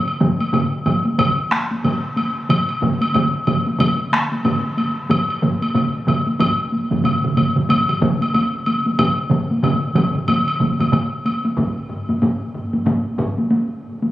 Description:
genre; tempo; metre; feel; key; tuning
japanese traditional, taiko drum ensemble; 93 BPM; 4/4; swing 60% on 16ths; none; none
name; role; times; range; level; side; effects
woodblock; percussion; 0.1-11.4 s; none; -22 LUFS; left 1 dB; none
solo taiko drums; percussion; 0.2-14.1 s; none; -21 LUFS; left 1 dB; none
solo taiko drums; percussion; 0.2-13.4 s; none; -31 LUFS; equal; none
taiko ensemble; percussion; 0.2-13.4 s; none; -26 LUFS; left 1 dB; none
taiko ensemble; percussion; 0.2-11.1 s; none; -22 LUFS; right 2 dB; none
room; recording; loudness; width
wet huge ambient reverb, RT60 7.6 s; recorded on a phone in the room, studio reverb; -16 LUFS; side -14 dB against mid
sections
0.0-11.6 A section; 11.6-14.1 B section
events
none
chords
none

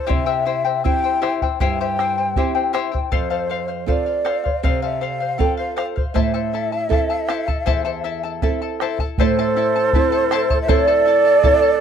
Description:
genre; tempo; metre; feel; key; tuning
andean folk, Andean ensemble; 79 BPM; 4/4; straight; A minor; A4 = 440 Hz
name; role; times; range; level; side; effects
breathy mellow large quena; melody; 0.0-11.8 s; C5 to G5; -20 LUFS; equal; tape echo
charango; accompaniment; 0.0-11.8 s; E4 to A5; -24 LUFS; left 12 dB; none
nylon-string guitar; accompaniment; 0.1-11.8 s; E2 to A4; -25 LUFS; right 11 dB; none
bombo; percussion; 0.1-11.6 s; none; -22 LUFS; equal; none
bright large quena; second line; 9.2-11.8 s; A4 to C5; -24 LUFS; right 10 dB; none
room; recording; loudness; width
light reverb; dry, close 1970s-style studio recording; -17 LUFS; side -8 dB against mid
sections
0.0-9.2 A section; 9.2-11.8 A section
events
none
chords
0.1 C; 3.1 F; 6.2 Am

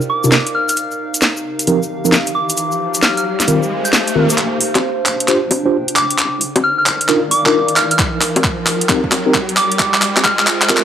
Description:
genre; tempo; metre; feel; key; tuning
UK garage, two-step garage; 133 BPM; 4/4; swing 65% on 16ths; Bb major; A4 = 438 Hz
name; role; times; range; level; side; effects
tube shaker; percussion; 0.0-4.4 s; none; -24 LUFS; left 2 dB; none
warbly tape-like pad; texture; 0.0-10.8 s; D4 to G5; -23 LUFS; equal; chorus, built-in reverb, phaser, sidechain pumping
soft synth bell; melody; 0.1-10.4 s; D6 to G6; -18 LUFS; equal; chorus, phaser
mellow tine electric piano; stabs; 0.2-10.8 s; C3 to C5; -16 LUFS; equal; medium stereo tremolo, low-pass filter, tape echo
garage drum kit; drums; 0.3-10.8 s; bongos, handclaps, hi-hat, rim click, snare drum; -15 LUFS; equal; studio reverb
riser and reverse cymbal; sound effects; 1.7-10.8 s; none; -24 LUFS; right 1 dB; none
deep soft wobble bass; bass; 4.4-10.6 s; Eb1 to C2; -32 LUFS; equal; chorus, high-pass filter
electronic kick drum; drums; 8.0-10.8 s; none; -22 LUFS; equal; overdrive, studio reverb
room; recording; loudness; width
light reverb; dry, gritty hardware recording, high-pass filter; -12 LUFS; side -9 dB against mid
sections
0.0-4.4 A section; 4.4-10.8 B section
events
riser 1.7-4.4, 4.4-10.8; build-up 4.4-10.8; drum fill 4.4-10.8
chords
0.0 Cm11; 0.5 F9sus4; 2.4 Eb69; 4.4 Bb69; 6.2 Cm11; 7.8 F9sus4; 9.6 Eb69

